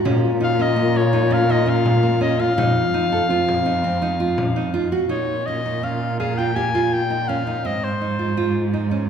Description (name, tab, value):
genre	contemporary instrumental, chamber music in an uneven meter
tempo	166 BPM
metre	7/4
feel	straight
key	Bb dorian from 5.1 s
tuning	A4 = 441 Hz
part	dark French horn	second line	0.0-5.1 s	C4 to F4	-23 LUFS	left 7 dB	none
part	warm cello	bass	0.0-9.1 s	F2 to Bb2	-23 LUFS	right 3 dB	none
part	nylon-string guitar	arpeggios	0.1-9.0 s	Bb3 to A4	-24 LUFS	right 3 dB	none
part	frame drum	percussion	0.1-5.0 s	none	-26 LUFS	left 1 dB	none
part	breathy soprano saxophone	melody	0.4-8.6 s	C5 to Ab5	-23 LUFS	left 2 dB	none
room	wet concert hall reverb, RT60 2.0 s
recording	heard from further back in the room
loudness	-18 LUFS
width	side -7 dB against mid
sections	0.0-5.1 A section; 5.1-9.1 B section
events	none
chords	0.0 Bbm; 2.6 F5; 5.1 Bbm; 7.7 Ab